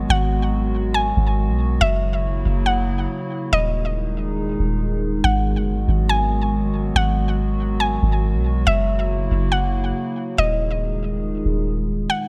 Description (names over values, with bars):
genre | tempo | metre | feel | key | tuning
hip hop, atmospheric cloud-rap | 140 BPM | 4/4 | half-time | G# minor | A4 = 440 Hz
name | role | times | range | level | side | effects
mallet-like synth pluck | melody | 0.0-12.3 s | D#5 to G#5 | -26 LUFS | equal | chorus, tape echo
warbly tape-like pad | sustained chords | 0.0-12.3 s | A#2 to G#4 | -27 LUFS | equal | chorus, built-in reverb
soft 808-style bass | bass | 0.0-12.1 s | D#1 to B1 | -23 LUFS | equal | none
room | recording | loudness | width
light reverb, digital ambience | none | -21 LUFS | mono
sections
0.0-12.1 A section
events
none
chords
0.0 G#m7; 1.8 F#7; 3.5 D#sus4; 5.2 G#m7; 8.7 F#7; 10.4 D#sus4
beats
| 0.10 0.52 0.95 1.38 | 1.81 2.24 2.67 3.10 | 3.52 3.95 4.38 4.81 | 5.24 5.67 6.10 6.52 | 6.95 7.38 7.81 8.24 | 8.67 9.10 9.52 9.95 | 10.38 10.81 11.24 11.67 | 12.10